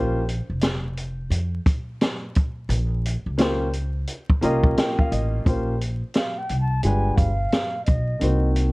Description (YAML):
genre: hip hop, jazz-hop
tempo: 87 BPM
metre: 4/4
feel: swing 64% on 16ths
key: Bb dorian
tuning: A4 = 435 Hz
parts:
  - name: dark upright piano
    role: accompaniment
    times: 0.0-8.7 s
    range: Ab3 to Bb5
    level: -24 LUFS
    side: equal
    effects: none
  - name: upright bass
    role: bass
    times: 0.0-8.7 s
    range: F1 to F2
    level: -24 LUFS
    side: equal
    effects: none
  - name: open jazz drum kit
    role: drums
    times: 0.3-8.7 s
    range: hi-hat, kick drum, snare drum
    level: -23 LUFS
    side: equal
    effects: none
  - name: baroque flute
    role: melody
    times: 6.2-8.5 s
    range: Eb5 to A5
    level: -28 LUFS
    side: equal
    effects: slapback echo
room: light reverb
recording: dark, warm production, vinyl crackle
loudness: -20 LUFS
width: side -23 dB against mid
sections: 0.0-5.5 A section; 5.5-8.7 B section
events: upright piano fill 4.1-5.5; flute solo 5.5-8.7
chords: 0.0 Bbm69; 6.8 G7b9; 8.2 Cm7b5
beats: 0.63 1.32 2.01 | 2.70 3.39 4.08 4.76 | 5.46 6.14 6.83 7.52 | 8.21